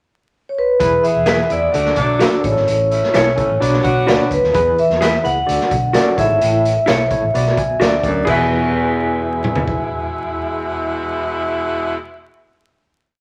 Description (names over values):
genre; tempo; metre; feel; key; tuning
uptempo 1960s-style soul; 128 BPM; 4/4; straight; E mixolydian; A4 = 440 Hz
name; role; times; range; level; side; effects
vibraphone with medium mallets; melody; 0.5-12.0 s; B4 to G#5; -20 LUFS; equal; none
overdriven tine electric piano; accompaniment; 0.8-12.0 s; E2 to G#5; -25 LUFS; equal; fast tremolo
vintage muted fingered electric bass; bass; 0.8-11.9 s; E1 to E2; -26 LUFS; equal; none
raw garage drum kit; drums; 0.8-9.8 s; crash cymbal, hi-hat, kick drum, snare drum, toms; -24 LUFS; equal; none
bright saxophone section; second line; 1.0-4.3, 8.3-12.0 s; B2 to G#4; -25 LUFS; equal; none
electric guitar through a small old amp; stabs; 1.3-12.0 s; E4 to E5; -24 LUFS; equal; none
mellow baritone saxophone; riff; 4.5-9.6 s; E2 to A2; -24 LUFS; equal; none
room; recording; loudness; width
moderate large studio reverb, RT60 1.1 s; vinyl crackle; -17 LUFS; mono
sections
0.0-0.8 pickup bar; 0.8-8.3 verse; 8.3-12.0 final chord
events
tine electric piano fill 7.3-8.3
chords
0.0 N.C.; 0.8 E; 1.7 D; 2.4 A; 3.6 Bm; 4.5 E; 5.5 D; 6.2 A; 7.3 Bm; 7.8 D; 8.3 E